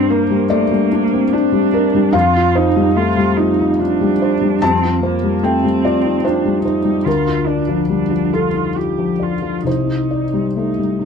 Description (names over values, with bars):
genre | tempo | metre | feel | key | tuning
neoclassical piano and strings | 66-74 BPM | 3/4 | rubato | unclear | A4 = 443 Hz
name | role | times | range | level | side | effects
muted cello | second line | 0.0-11.1 s | Bb3 to G4 | -19 LUFS | right 10 dB | none
felt-muted upright piano | accompaniment | 0.0-11.1 s | C2 to A5 | -15 LUFS | left 4 dB | none
room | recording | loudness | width
light reverb | dark, warm production | -14 LUFS | side -6 dB against mid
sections
0.0-11.1 A section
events
none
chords
0.0 Gm; 2.1 Fsus2; 7.1 Dm; 9.7 Cmadd9